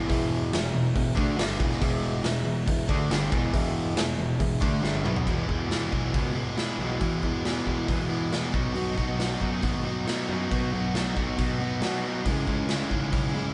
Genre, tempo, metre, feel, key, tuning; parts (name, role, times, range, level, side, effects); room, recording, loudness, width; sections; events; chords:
classic rock; 138 BPM; 4/4; straight; E mixolydian, E major from 5.3 s; A4 = 440 Hz
crunchy overdriven guitar; riff; 0.0-13.5 s; E2 to F#4; -34 LUFS; equal
overdriven semi-hollow guitar; riff; 0.0-13.5 s; E2 to D4; -34 LUFS; equal
fuzz picked electric bass; bass; 0.0-13.3 s; E1 to E3; -34 LUFS; equal; overdrive
reed electric piano; accompaniment; 0.1-5.3 s; G#4 to B5; -39 LUFS; equal; fast tremolo
raw garage drum kit; drums; 0.1-13.2 s; crash cymbal, hi-hat, kick drum, snare drum, toms; -32 LUFS; equal
picked plugged-in steel-string acoustic guitar; accompaniment; 5.3-13.5 s; E2 to F#4; -39 LUFS; equal
moderate stone room reverb, RT60 1.2 s; band playing live in one room, nothing above 10.9 kHz; -27 LUFS; mono
0.0-5.3 A section; 5.3-13.5 B section
reed electric piano fill 4.4-5.3; drum fill 4.8-5.3
0.0 E; 5.3 Eadd9; 8.5 B; 12.3 C#m